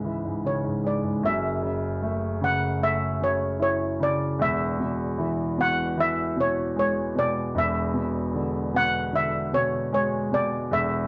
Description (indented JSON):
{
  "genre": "pop",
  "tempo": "76 BPM",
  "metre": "4/4",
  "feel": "straight",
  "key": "unclear",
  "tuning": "A4 = 440 Hz",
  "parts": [
    { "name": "steel pan", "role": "melody", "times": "0.0-11.1 s", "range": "C#5 to F#5", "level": "-27 LUFS", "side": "equal", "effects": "plate reverb" },
    { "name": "warm grand piano", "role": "accompaniment", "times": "0.0-11.1 s", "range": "E1 to E4", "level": "-29 LUFS", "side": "equal", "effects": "none" }
  ],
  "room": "moderate studio reverb, RT60 0.6 s",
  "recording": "worn, warbling old tape, cassette tape, warbly pitch drift",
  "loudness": "-25 LUFS",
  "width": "mono",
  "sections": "0.0-1.2 A section; 1.2-11.1 B section",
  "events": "none",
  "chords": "0.0 C#m; 1.2 F#m7; 4.4 E6; 7.6 E7"
}